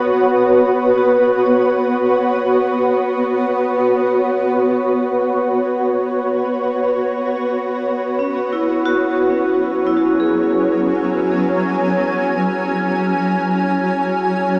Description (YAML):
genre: ambient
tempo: free time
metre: none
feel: none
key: unclear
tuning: A4 = 440 Hz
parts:
  - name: shimmering ambient pad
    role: sustained chords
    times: 0.0-14.6 s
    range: F#3 to G#5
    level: -15 LUFS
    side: equal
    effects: chorus, built-in reverb, shimmer reverb
  - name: vibraphone with hard mallets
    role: arpeggios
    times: 0.0-14.6 s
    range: C#4 to G#4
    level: -21 LUFS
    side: equal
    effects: tape echo, shimmer reverb
room: wet cathedral reverb, RT60 5.0 s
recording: small speaker sound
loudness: -14 LUFS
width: side -39 dB against mid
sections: 0.0-14.6 A section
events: fade-in on vibraphone 0.0-14.6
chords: 0.0 B5; 8.8 F#7(no3)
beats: free time